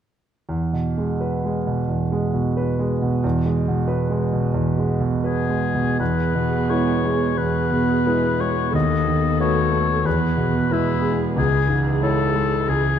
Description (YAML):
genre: classical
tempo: 88 BPM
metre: 4/4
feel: uneven beats, rubato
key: E major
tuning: A4 = 439 Hz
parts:
  - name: clear concert grand piano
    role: melody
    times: 0.5-13.0 s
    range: C#2 to C#5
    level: -20 LUFS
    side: right 1 dB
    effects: none
  - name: warm oboe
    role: second line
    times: 5.3-13.0 s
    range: E4 to D#5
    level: -24 LUFS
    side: left 7 dB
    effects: none
  - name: rich studio viola section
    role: accompaniment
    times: 6.0-13.0 s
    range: E3 to A4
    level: -26 LUFS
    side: right 3 dB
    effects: none
room: moderate concert hall reverb, RT60 2.4 s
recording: dark, warm production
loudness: -18 LUFS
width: side -9 dB against mid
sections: 0.5-6.0 A section; 6.0-13.0 B section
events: none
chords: 0.5 E; 8.7 B7/D#; 10.1 E; 11.4 C#m